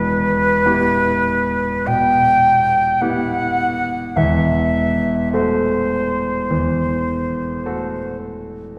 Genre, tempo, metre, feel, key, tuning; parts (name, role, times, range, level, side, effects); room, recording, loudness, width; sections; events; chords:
classical, romantic duo for flute and grand piano; 52 BPM; 4/4; rubato; A4 = 436 Hz
silver concert flute; melody; 0.0-8.2 s; B4 to G5; -20 LUFS; equal
warm grand piano; accompaniment; 0.0-8.8 s; E1 to A4; -22 LUFS; equal
wet concert hall reverb, RT60 1.9 s; heard from further back in the room; -18 LUFS; mono
0.0-8.8 A section
0.0 Em; 4.2 F#m7b5/E